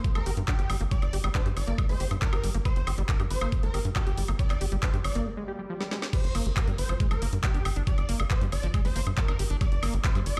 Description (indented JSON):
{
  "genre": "psychedelic trance",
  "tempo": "138 BPM",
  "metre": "4/4",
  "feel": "straight",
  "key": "G phrygian",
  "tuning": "A4 = 439 Hz",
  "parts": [
    { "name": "liquid acid bass", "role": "riff", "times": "0.0-10.4 s", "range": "F3 to G4", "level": "-40 LUFS", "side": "equal", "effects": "chorus, sidechain pumping, delay" },
    { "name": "drum and bass drum kit", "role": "drums", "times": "0.0-10.4 s", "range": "crash cymbal, handclaps, hi-hat, snare drum, woodblock", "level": "-37 LUFS", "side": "equal", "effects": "overdrive" },
    { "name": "electronic kick drum", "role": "drums", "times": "0.0-10.1 s", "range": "none", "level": "-28 LUFS", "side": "equal", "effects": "overdrive" },
    { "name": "swarming rave lead", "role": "melody", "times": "0.2-10.4 s", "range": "G4 to D5", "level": "-40 LUFS", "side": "equal", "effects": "chorus, phaser, sidechain pumping, delay" },
    { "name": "tight sequencer bass", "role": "bass", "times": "0.2-10.4 s", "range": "G1 to G2", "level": "-31 LUFS", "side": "equal", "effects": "none" },
    { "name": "swell", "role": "sound effects", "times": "5.4-6.1 s", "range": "none", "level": "-43 LUFS", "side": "equal", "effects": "none" }
  ],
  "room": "digital ambience",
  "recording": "played on a big sound system in a bare room, large studio reverb",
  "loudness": "-28 LUFS",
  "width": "mono",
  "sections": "0.0-6.1 A section; 6.1-10.4 B section",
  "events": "break 5.3-6.1; swell 5.4-6.1; drum fill 5.8-6.1; drop 6.1-10.4",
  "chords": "0.0 G5"
}